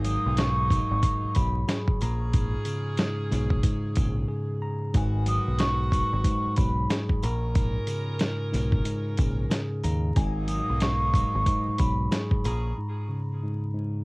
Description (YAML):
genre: hip hop, boom-bap hip-hop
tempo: 92 BPM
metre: 4/4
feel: swing 62% on 16ths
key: G# dorian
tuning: A4 = 440 Hz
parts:
  - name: vibraphone with soft mallets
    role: melody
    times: 0.0-12.1 s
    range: G#5 to D#6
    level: -30 LUFS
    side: equal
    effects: cassette tape, analog delay
  - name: tine electric piano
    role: accompaniment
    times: 0.0-14.0 s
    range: G#2 to A#5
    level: -29 LUFS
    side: equal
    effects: none
  - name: edgy saxophone section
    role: stabs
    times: 0.0-12.8 s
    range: D#3 to A#4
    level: -38 LUFS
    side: right 1 dB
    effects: analog delay
  - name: deep dub fingered electric bass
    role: bass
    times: 0.0-12.7 s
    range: G#1 to D#2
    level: -27 LUFS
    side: equal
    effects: none
  - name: dusty soul sampler-style drum kit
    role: drums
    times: 0.0-12.6 s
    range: hi-hat, kick drum, snare drum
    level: -25 LUFS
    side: equal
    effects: overdrive, cassette tape
  - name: sleigh bells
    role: percussion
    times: 0.1-12.6 s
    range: none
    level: -48 LUFS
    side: left 3 dB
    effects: none
room: little or no reverb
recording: home recording on cassette, vinyl crackle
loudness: -24 LUFS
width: side -28 dB against mid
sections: 0.0-14.0 A section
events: break 4.3-4.9, 12.8-14.0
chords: 0.0 G#m9; 2.0 A#m7; 4.9 G#m7; 7.2 A#m7; 10.2 G#m9; 12.4 A#m7